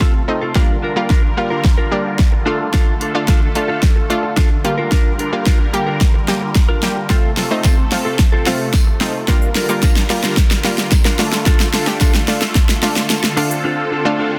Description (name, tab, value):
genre	dance-pop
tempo	110 BPM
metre	4/4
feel	straight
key	G minor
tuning	A4 = 440 Hz
part	analog pluck	accompaniment	0.0-14.3 s	G3 to G4	-24 LUFS	equal	chorus, sidechain pumping
part	filtered supersaw swell	sustained chords	0.0-14.4 s	C3 to Bb4	-26 LUFS	equal	phaser, sidechain pumping
part	direct-recorded clean electric guitar	riff	0.0-14.4 s	C4 to Bb4	-26 LUFS	equal	subtle chorus
part	pop drum kit	drums	0.0-13.6 s	hi-hat, kick drum, shaker, snare drum	-16 LUFS	equal	none
part	tambourine	percussion	7.6-13.2 s	none	-34 LUFS	equal	none
room	light reverb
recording	dense, heavily limited modern master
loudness	-16 LUFS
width	mono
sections	0.0-14.4 A section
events	build-up 0.0-14.4; drum fill 0.0-13.6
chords	0.0 F; 0.6 Gm7; 2.5 Dm; 4.6 Gm7; 7.1 F; 9.3 Gm7; 11.2 Dm; 13.4 F6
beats	0.01 | 0.56 1.10 1.65 2.19 | 2.74 3.28 3.83 4.37 | 4.92 5.46 6.01 6.56 | 7.10 7.65 8.19 8.74 | 9.28 9.83 10.37 10.92 | 11.46 12.01 12.56 13.10 | 13.65 14.19